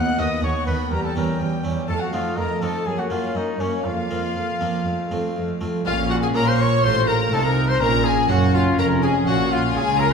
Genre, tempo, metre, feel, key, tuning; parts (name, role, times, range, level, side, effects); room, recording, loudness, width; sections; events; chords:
classical, baroque-style concerto movement with solo episodes; 123 BPM; 4/4; straight; Bb minor; A4 = 440 Hz
warm chamber violin section; melody; 0.0-10.1 s; Db5 to Db6; -28 LUFS; left 4 dB
warm trumpet; melody; 0.0-10.1 s; Db4 to F#5; -26 LUFS; left 1 dB
warm chamber violin section; second line; 0.0-10.1 s; F4 to F#6; -27 LUFS; left 3 dB
dark chamber viola section; accompaniment; 0.0-10.1 s; G3 to F4; -27 LUFS; left 1 dB
harpsichord; accompaniment; 0.0-10.1 s; D#2 to F#4; -26 LUFS; right 1 dB
rich chamber cello section; bass; 0.0-10.1 s; D#2 to Bb3; -25 LUFS; right 2 dB
rich chamber double bass section; bass; 5.9-10.1 s; F1 to Bb2; -24 LUFS; right 2 dB
wet recital hall reverb, RT60 1.3 s; heard from further back in the room; -18 LUFS; side -6 dB against mid
0.0-5.9 A section; 5.9-10.1 B section
0.0 B/D#; 0.9 Edim7; 1.9 F7; 2.9 Gb; 3.9 Fsus4; 4.9 F; 5.9 Bbm; 6.8 F/A; 7.8 Bbm